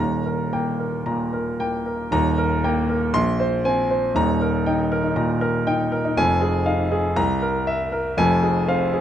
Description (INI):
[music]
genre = classical, virtuoso piano study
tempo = 119 BPM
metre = 4/4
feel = rubato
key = Eb major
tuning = A4 = 442 Hz
[part]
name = warm grand piano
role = solo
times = 0.0-9.0 s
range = Eb1 to C6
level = -19 LUFS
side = equal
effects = none
[sound]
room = moderate recital hall reverb, RT60 1.3 s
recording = close, detailed microphones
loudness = -19 LUFS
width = side -10 dB against mid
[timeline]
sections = 0.0-2.1 A section; 2.1-9.0 A section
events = none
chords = 0.0 Eb; 3.1 Bbsus2; 4.2 Eb; 6.2 Fm7; 7.2 C7; 8.2 Fm